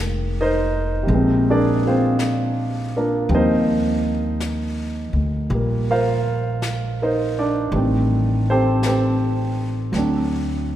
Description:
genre	jazz ballad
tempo	54 BPM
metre	4/4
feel	swing 66% on 8ths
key	unclear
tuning	A4 = 440 Hz
part	warm grand piano	accompaniment	0.0-10.8 s	C3 to F5	-20 LUFS	equal	none
part	upright bass	bass	0.0-10.8 s	F1 to Eb2	-22 LUFS	equal	none
part	jazz brush drum kit	drums	1.1-10.8 s	brushed snare drum, hi-hat, snare drum	-36 LUFS	left 3 dB	none
room	moderate church reverb, RT60 2.7 s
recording	recorded in a church or concert hall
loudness	-18 LUFS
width	side -12 dB against mid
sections	0.0-10.8 A section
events	none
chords	0.0 Fm11; 1.1 Bb9; 3.3 Eb69; 7.7 Am7b5; 9.9 D7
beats	1.08 2.18 | 3.29 4.39 5.50 6.61 | 7.71 8.82 9.93

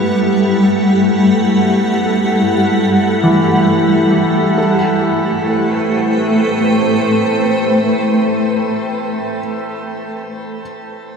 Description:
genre	ambient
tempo	free time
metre	none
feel	none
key	A dorian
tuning	A4 = 441 Hz
part	granular cloud pad	sustained chords	0.0-8.9 s	G3 to G5	-14 LUFS	equal	built-in reverb
part	felt-muted upright piano	arpeggios	0.0-10.6 s	E3 to A4	-21 LUFS	left 1 dB	diffuse ambient delay
part	bowed-like drone	drone	0.0-9.0 s	A3 to E4	-20 LUFS	equal	built-in reverb
part	backwards swelling texture	texture	0.0-4.6 s	F#5	-33 LUFS	right 1 dB	none
room	wet shimmer reverb, RT60 7.2 s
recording	dark, warm production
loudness	-12 LUFS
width	side -6 dB against mid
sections	0.0-4.6 A section; 4.6-8.1 B section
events	none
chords	0.0 Gmaj9; 4.6 Am9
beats	free time

